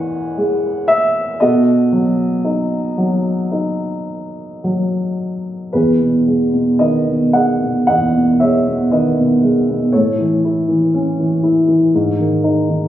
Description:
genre	classical, lyrical solo piano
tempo	52-61 BPM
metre	4/4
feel	rubato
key	E major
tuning	A4 = 437 Hz
part	dark baby grand piano	solo	0.0-12.9 s	E2 to G#5	-13 LUFS	equal	none
room	moderate recital hall reverb, RT60 1.5 s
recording	recorded on a phone in the room, studio reverb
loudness	-13 LUFS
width	side -12 dB against mid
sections	0.0-5.7 A section; 5.7-12.9 B section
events	none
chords	0.0 E6; 1.4 B7; 5.7 Emaj7; 9.9 A; 11.9 G#5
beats	0.37 | 1.40 2.44 3.52 4.64 | 5.74 6.80 7.87 8.91 | 9.92 10.92 11.92

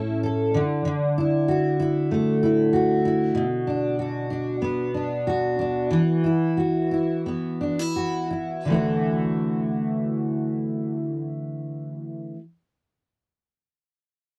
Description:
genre	pop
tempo	81-96 BPM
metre	4/4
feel	swing 55% on 16ths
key	D major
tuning	A4 = 440 Hz
part	fingerpicked steel-string acoustic guitar	accompaniment	0.0-12.4 s	A2 to A4	-24 LUFS	equal	double-tracked
room	light reverb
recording	dry, close 1970s-style studio recording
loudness	-24 LUFS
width	mono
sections	0.0-8.7 A section; 8.7-11.6 B section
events	slowing down 3.4-8.7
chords	0.0 A; 0.5 Dadd9; 3.4 Bm; 5.9 Esus2; 8.7 Dadd9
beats	0.22 | 0.85 1.48 2.10 2.73 | 3.35 3.98 4.61 5.25 | 5.91 6.57 7.25 7.96 | 8.68 9.42 10.15 10.89

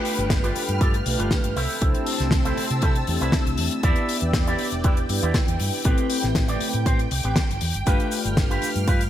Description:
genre	nu-disco, nu disco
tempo	119 BPM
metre	4/4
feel	straight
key	G mixolydian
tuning	A4 = 441 Hz
part	mellow synth brass	accompaniment	0.0-9.1 s	A3 to C5	-28 LUFS	left 1 dB	chorus, sidechain pumping, ping-pong delay
part	lush unison pad	sustained chords	0.0-9.1 s	C4 to F6	-31 LUFS	right 1 dB	chorus, phaser, sidechain pumping
part	electric guitar with an envelope filter	riff	0.0-9.0 s	C4 to D5	-30 LUFS	right 1 dB	lush chorus, ping-pong delay
part	damped 70s drum kit	drums	0.1-9.1 s	hi-hat, shaker, snare drum	-27 LUFS	left 2 dB	gated reverb
part	hollow-body short-scale fingered electric bass	bass	0.2-9.1 s	E1 to C3	-26 LUFS	equal	tube saturation
part	electronic kick drum	drums	0.3-9.0 s	none	-22 LUFS	equal	none
room	light reverb, small room ambience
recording	bright 1980s-style digital production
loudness	-20 LUFS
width	side -11 dB against mid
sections	0.0-9.1 A section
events	none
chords	0.0 G7; 1.6 C6; 3.8 Em7; 5.9 Am9; 7.9 G7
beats	0.31 0.81 1.31 | 1.82 2.32 2.83 3.33 | 3.83 4.34 4.84 5.35 | 5.85 6.36 6.86 7.37 | 7.87 8.37 8.88

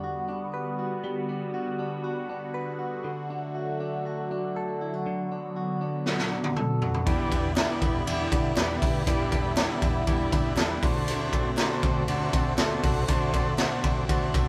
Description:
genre	jangly indie pop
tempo	120 BPM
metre	4/4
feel	straight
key	unclear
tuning	A4 = 440 Hz
part	phased analog pad	sustained chords	0.0-14.5 s	D3 to F#4	-35 LUFS	equal	phaser, chorus
part	direct-recorded clean electric guitar	arpeggios	0.0-14.5 s	D3 to B4	-36 LUFS	equal	none
part	raw garage drum kit	drums	6.1-14.5 s	hi-hat, kick drum, ride cymbal, snare drum, toms	-28 LUFS	equal	none
part	overdriven combo organ	accompaniment	7.1-14.5 s	D4 to E5	-33 LUFS	equal	none
part	vintage muted fingered electric bass	bass	7.1-14.5 s	C2 to E2	-35 LUFS	equal	none
part	group handclap	percussion	7.6-13.7 s	none	-47 LUFS	equal	none
room	moderate studio reverb, RT60 0.5 s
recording	band playing live in one room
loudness	-27 LUFS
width	mono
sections	0.0-14.5 A section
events	drum fill 6.1-7.1; transistor combo organ fill 14.1-14.5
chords	0.0 Gmaj7; 3.1 D; 7.1 Em7; 10.8 D7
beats	0.04 0.54 | 1.04 1.54 2.05 2.55 | 3.05 3.55 4.05 4.56 | 5.06 5.56 6.06 6.56 | 7.07 7.57 8.07 8.57 | 9.07 9.57 10.07 10.58 | 11.08 11.58 12.08 12.58 | 13.09 13.59 14.09

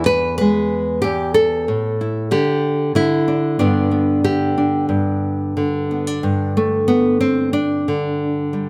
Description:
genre	folk, solo fingerstyle acoustic guitar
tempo	93 BPM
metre	4/4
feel	rubato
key	G major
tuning	A4 = 440 Hz
part	nylon-string guitar	solo	0.0-8.7 s	E2 to B4	-18 LUFS	equal	none
room	light reverb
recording	close, detailed microphones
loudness	-18 LUFS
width	mono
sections	0.0-6.2 A section; 6.2-8.7 B section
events	none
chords	0.0 E; 1.0 A5/E; 2.3 N.C.; 3.6 G; 6.2 G5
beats	0.40 | 1.04 1.67 2.31 2.95 | 3.59 4.24 4.90 5.57 | 6.24 6.90 7.55 8.21

